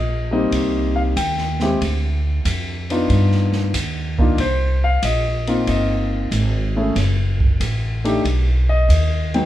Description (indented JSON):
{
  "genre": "jazz piano trio",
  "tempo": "93 BPM",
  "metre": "4/4",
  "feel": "swing 69% on 8ths",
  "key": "unclear",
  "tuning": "A4 = 443 Hz",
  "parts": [
    { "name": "dark grand piano", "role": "melody", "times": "0.0-9.5 s", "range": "F#3 to G5", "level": "-21 LUFS", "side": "left 2 dB", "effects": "none" },
    { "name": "upright bass", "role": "bass", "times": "0.0-9.5 s", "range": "Gb1 to G2", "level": "-19 LUFS", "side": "equal", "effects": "none" },
    { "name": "open jazz drum kit", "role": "drums", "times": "0.5-9.4 s", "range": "hi-hat, kick drum, ride cymbal, snare drum", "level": "-25 LUFS", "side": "right 1 dB", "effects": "none" }
  ],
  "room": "moderate large studio reverb, RT60 1.2 s",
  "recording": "band playing live in one room",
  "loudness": "-16 LUFS",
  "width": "side -13 dB against mid",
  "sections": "0.0-9.5 A section",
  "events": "none",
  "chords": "0.0 Abmaj9 (rootless); 1.8 Dm; 3.1 G7b13; 4.4 Cm7; 7.0 Gbm; 8.3 B"
}